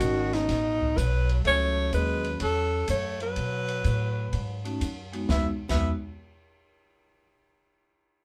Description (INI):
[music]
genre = jazz, small-group swing and bop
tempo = 125 BPM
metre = 4/4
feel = swing 67% on 8ths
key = E major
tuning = A4 = 440 Hz
[part]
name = breathy alto saxophone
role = melody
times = 0.0-5.9 s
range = D#4 to E5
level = -30 LUFS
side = equal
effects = none
[part]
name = clear tenor saxophone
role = second line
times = 0.0-5.9 s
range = B2 to B3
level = -39 LUFS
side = equal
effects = none
[part]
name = vibraphone with medium mallets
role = accompaniment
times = 0.0-5.9 s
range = F#3 to F#4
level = -36 LUFS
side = equal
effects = none
[part]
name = upright bass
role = bass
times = 0.0-5.9 s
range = G#1 to B2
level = -31 LUFS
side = equal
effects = none
[part]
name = open jazz drum kit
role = drums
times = 0.0-5.8 s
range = crash cymbal, hi-hat, kick drum, ride cymbal, snare drum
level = -37 LUFS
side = equal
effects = none
[sound]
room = moderate small room reverb, RT60 0.5 s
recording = band playing live in one room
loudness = -27 LUFS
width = mono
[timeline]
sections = 0.0-5.3 A section; 5.3-7.2 B section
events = none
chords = 0.0 B9; 1.4 F#m7; 3.4 B7; 5.3 Emaj9